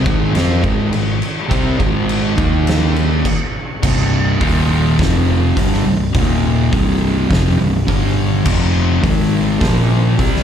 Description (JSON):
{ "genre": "stoner and doom metal", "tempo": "104 BPM", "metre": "4/4", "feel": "straight", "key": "C minor", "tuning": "A4 = 440 Hz", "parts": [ { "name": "thick fuzz guitar", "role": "riff", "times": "0.0-10.4 s", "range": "C2 to F4", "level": "-16 LUFS", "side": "equal", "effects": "distortion" }, { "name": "fingered electric bass", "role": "bass", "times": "0.0-10.4 s", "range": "C1 to F2", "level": "-19 LUFS", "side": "equal", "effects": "overdrive" }, { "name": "oversized low-tuned drum kit", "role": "drums", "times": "0.1-10.4 s", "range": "crash cymbal, hi-hat, kick drum, snare drum", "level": "-18 LUFS", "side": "equal", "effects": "none" } ], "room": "little or no reverb", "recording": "live gig heard through the venue's PA, club reverb", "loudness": "-13 LUFS", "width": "side -8 dB against mid", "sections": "0.0-3.8 A section; 3.8-10.4 B section", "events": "stop 3.3-3.8", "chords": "0.0 Ab5; 2.4 Eb5; 3.3 N.C.; 3.8 C5; 4.4 Eb5; 5.0 F5; 5.6 C5; 6.1 Eb5; 6.7 C5; 7.9 G5; 8.5 F5; 9.0 Ab5; 9.6 Bb5" }